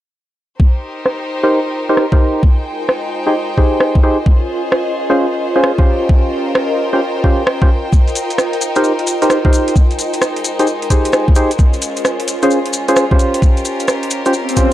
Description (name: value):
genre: UK garage, two-step garage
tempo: 131 BPM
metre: 4/4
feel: swing 65% on 16ths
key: F minor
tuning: A4 = 440 Hz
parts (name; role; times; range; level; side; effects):
- clear studio violin section; sustained chords; 0.6-14.7 s; Ab3 to G5; -24 LUFS; equal; sidechain pumping
- electronic kick drum; drums; 0.6-14.7 s; none; -11 LUFS; equal; overdrive
- granular cloud pad; texture; 1.8-14.7 s; F4 to G5; -22 LUFS; equal; built-in reverb, sidechain pumping
- garage drum kit; drums; 1.1-14.7 s; hi-hat, rim click; -17 LUFS; equal; overdrive, low-pass filter on snare, low-pass filter on hats
- percussive organ stab; stabs; 1.4-14.7 s; Db4 to C5; -15 LUFS; equal; chorus, digital delay
- maracas; percussion; 7.9-14.7 s; none; -24 LUFS; left 5 dB; none
- swell; sound effects; 14.4-14.7 s; none; -17 LUFS; left 1 dB; none
room: moderate studio reverb, RT60 0.7 s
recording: dark, warm production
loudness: -12 LUFS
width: side -13 dB against mid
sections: 0.6-14.7 A section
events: filter sweep on drum 0.6-14.7; filter sweep on synth stab 0.6-14.7; swell 14.4-14.7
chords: 0.6 Cm7; 2.4 Fm9; 4.3 Bbm9; 5.9 Eb13; 7.9 Cm7; 9.8 Fm9; 11.6 Bbm9; 13.2 Eb13